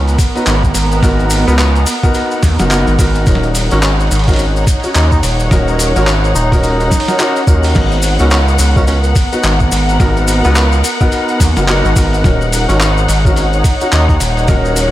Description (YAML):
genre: glitch hop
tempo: 107 BPM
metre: 4/4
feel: swing 60% on 16ths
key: G# minor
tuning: A4 = 439 Hz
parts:
  - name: gritty driven synth bass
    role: bass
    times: 0.0-14.9 s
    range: D#1 to D#2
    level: -13 LUFS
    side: equal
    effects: overdrive
  - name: muted studio string section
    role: texture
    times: 0.0-14.9 s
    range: B3 to F#5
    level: -19 LUFS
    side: equal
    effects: sidechain pumping
  - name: boom bap sampler-style drum kit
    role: drums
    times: 0.1-14.9 s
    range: crash cymbal, handclaps, hi-hat, snare drum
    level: -20 LUFS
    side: equal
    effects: none
  - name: maracas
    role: percussion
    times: 0.1-14.9 s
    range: none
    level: -24 LUFS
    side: left 4 dB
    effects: none
  - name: electronic kick drum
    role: drums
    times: 0.2-14.6 s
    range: none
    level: -13 LUFS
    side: equal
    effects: none
  - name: warm grand piano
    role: stabs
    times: 0.4-14.9 s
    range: B3 to C#5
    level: -18 LUFS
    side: equal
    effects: sidechain pumping, ping-pong delay
  - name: clear tenor saxophone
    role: melody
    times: 1.5-14.2 s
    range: B3 to D#4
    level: -24 LUFS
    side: equal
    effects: ping-pong delay
room: light reverb, small room ambience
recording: none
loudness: -10 LUFS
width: side -14 dB against mid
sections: 0.0-14.9 A section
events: none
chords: 0.0 G#m9; 3.3 D#m7; 7.8 G#m9; 12.2 D#m7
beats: 0.47 | 1.03 1.59 2.15 2.71 | 3.27 3.83 4.39 4.95 | 5.51 6.07 6.63 7.20 | 7.76 8.32 8.88 9.44 | 10.00 10.56 11.12 11.68 | 12.24 12.80 13.36 13.92 | 14.48